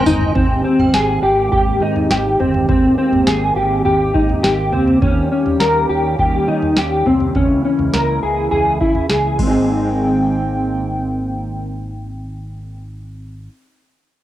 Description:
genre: dream pop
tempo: 103 BPM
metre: 4/4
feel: straight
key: Ab major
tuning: A4 = 441 Hz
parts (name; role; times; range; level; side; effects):
- hollow soft pad; sustained chords; 0.0-12.8 s; Db3 to G5; -22 LUFS; right 3 dB; chorus, cassette tape
- mellow electric guitar; arpeggios; 0.0-13.5 s; Ab3 to Bb4; -16 LUFS; left 1 dB; ensemble chorus, cassette tape, tape echo
- fretless electric bass; bass; 0.0-13.5 s; G1 to Eb3; -23 LUFS; equal; analog chorus
- synth chime; texture; 0.0-1.6 s; G5 to C6; -27 LUFS; right 4 dB; ensemble chorus, tremolo, cassette tape, tape echo, plate reverb
- booming analog drum machine; drums; 0.1-9.6 s; crash cymbal, kick drum, snare drum, tambourine, toms; -20 LUFS; equal; cassette tape
room: wet small room reverb, RT60 0.6 s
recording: home recording on cassette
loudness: -13 LUFS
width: side -13 dB against mid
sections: 0.4-9.7 A section; 9.7-12.0 B section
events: none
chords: 0.0 Abmaj9; 5.0 Eb7; 7.3 Dbm6; 9.4 Abmaj9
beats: | 0.35 0.94 1.52 2.10 | 2.68 3.27 3.85 4.43 | 5.01 5.60 6.18 6.76 | 7.34 7.93 8.51 9.09 | 9.68 10.26 10.84 11.42

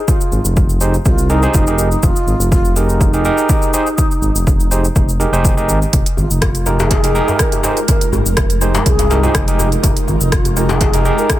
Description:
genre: afro house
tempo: 123 BPM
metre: 4/4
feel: swing 53% on 16ths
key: F minor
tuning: A4 = 441 Hz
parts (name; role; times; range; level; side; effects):
- mellow bass bansuri; melody; 0.0-11.4 s; Eb4 to Bb4; -22 LUFS; equal; tape echo
- afro-pop drum kit; drums; 0.1-11.4 s; cabasa, hi-hat, rim click; -21 LUFS; equal; tape echo
- electronic kick drum; drums; 0.1-11.4 s; none; -16 LUFS; equal; overdrive
- smooth gliding synth bass; bass; 0.3-11.1 s; F1 to C2; -16 LUFS; equal; sidechain pumping
- overdriven tine electric piano; stabs; 0.8-11.4 s; Eb4 to C5; -20 LUFS; right 2 dB; sidechain pumping, tape echo
- ethereal airy pad; sustained chords; 6.4-11.4 s; Ab3 to Bb4; -24 LUFS; right 1 dB; ensemble chorus, built-in reverb, sidechain pumping
- djembe; percussion; 6.2-11.4 s; none; -23 LUFS; left 3 dB; tape echo
room: light reverb, digital ambience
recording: echo-heavy mix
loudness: -12 LUFS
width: side -14 dB against mid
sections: 0.0-11.4 A section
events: none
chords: 0.0 Fm11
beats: | 0.08 0.57 1.06 1.54 | 2.03 2.52 3.01 3.50 | 3.98 4.47 4.96 5.45 | 5.93 6.42 6.91 7.40 | 7.88 8.37 8.86 9.35 | 9.84 10.32 10.81 11.30

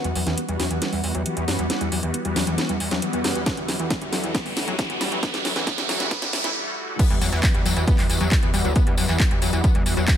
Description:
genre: uplifting trance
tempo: 136 BPM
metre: 4/4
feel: straight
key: E minor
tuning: A4 = 439 Hz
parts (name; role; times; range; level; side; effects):
- analog pluck; arpeggios; 0.0-10.2 s; E3 to E4; -29 LUFS; left 2 dB; chorus, sidechain pumping, tape echo
- gritty driven synth bass; bass; 0.0-10.1 s; D2 to F#2; -27 LUFS; equal; distortion, sidechain pumping
- house drum kit; drums; 0.0-10.2 s; crash cymbal, handclaps, hi-hat, snare drum; -27 LUFS; equal; overdrive
- riser and swell; sound effects; 2.7-7.0 s; none; -31 LUFS; right 4 dB; none
- electronic kick drum; drums; 3.5-10.2 s; none; -21 LUFS; equal; overdrive
- tambourine; percussion; 7.0-10.2 s; none; -32 LUFS; left 6 dB; none
room: digital ambience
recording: high-pass filter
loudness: -20 LUFS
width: side -10 dB against mid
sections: 0.0-7.0 A section; 7.0-10.2 B section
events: build-up 0.0-7.0; drum fill 0.0-6.6; filter sweep on synth pluck 0.0-7.0; filter sweep 0.0-7.0; riser 2.7-6.6; swell 6.1-7.0; break 6.6-7.0; drop 7.0-10.2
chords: 0.0 Emadd9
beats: 0.38 0.82 1.26 | 1.70 2.14 2.58 3.02 | 3.46 3.90 4.35 4.79 | 5.23 5.67 6.11 6.55 | 6.99 7.43 7.88 8.32 | 8.76 9.20 9.64 10.08

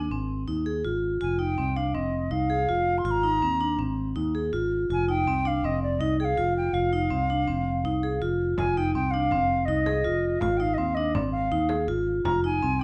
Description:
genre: contemporary instrumental, chamber music in an uneven meter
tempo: 163 BPM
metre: 5/4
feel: straight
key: F dorian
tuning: A4 = 444 Hz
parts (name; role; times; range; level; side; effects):
- wooden flute; melody; 0.0-12.8 s; D5 to C6; -30 LUFS; equal; none
- vibraphone with medium hard mallets; arpeggios; 0.0-12.8 s; C4 to Ab4; -29 LUFS; equal; none
- fingered electric bass; bass; 0.0-12.8 s; F1 to Eb2; -32 LUFS; equal; none
- frame drum; percussion; 8.6-12.4 s; none; -38 LUFS; equal; none
room: light reverb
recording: none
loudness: -26 LUFS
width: mono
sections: 0.0-8.6 A section; 8.6-12.8 B section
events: none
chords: 0.0 Ab6; 1.2 F7(no3); 3.1 Ab69; 4.9 F7(no3); 10.4 Ab6; 12.3 Fm7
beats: 0.11 0.47 0.84 | 1.21 1.58 1.95 2.32 2.69 | 3.05 3.42 3.79 4.16 4.53 | 4.89 5.26 5.63 6.00 6.37 | 6.74 7.11 7.47 7.84 8.21 | 8.58 8.95 9.31 9.68 10.05 | 10.42 10.79 11.16 11.52 11.89 | 12.26 12.63

